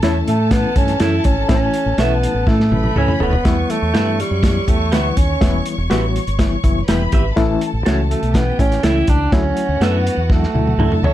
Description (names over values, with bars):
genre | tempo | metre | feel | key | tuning
uptempo 1960s-style soul | 123 BPM | 4/4 | straight | unclear | A4 = 440 Hz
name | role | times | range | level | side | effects
warm studio string section | second line | 0.0-11.1 s | F#4 to C#6 | -26 LUFS | left 2 dB | none
barky reed electric piano | accompaniment | 0.0-11.1 s | D3 to G4 | -23 LUFS | left 4 dB | overdrive, fast tremolo
electric guitar through a small old amp | stabs | 0.0-11.1 s | F#4 to E5 | -24 LUFS | right 5 dB | phaser
fingered electric bass | bass | 0.0-11.1 s | D#1 to A2 | -19 LUFS | equal | none
warm soul drum kit | drums | 0.0-11.1 s | hi-hat, kick drum, snare drum, toms | -18 LUFS | equal | none
warm alto saxophone | melody | 0.3-11.1 s | G3 to C#5 | -20 LUFS | right 2 dB | plate reverb
room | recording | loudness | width
light reverb | dark, warm production | -14 LUFS | side -13 dB against mid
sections
0.0-11.1 A section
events
drum fill 2.5-3.5, 10.3-11.1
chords
0.0 A; 3.5 Em; 7.4 A; 9.3 Dadd9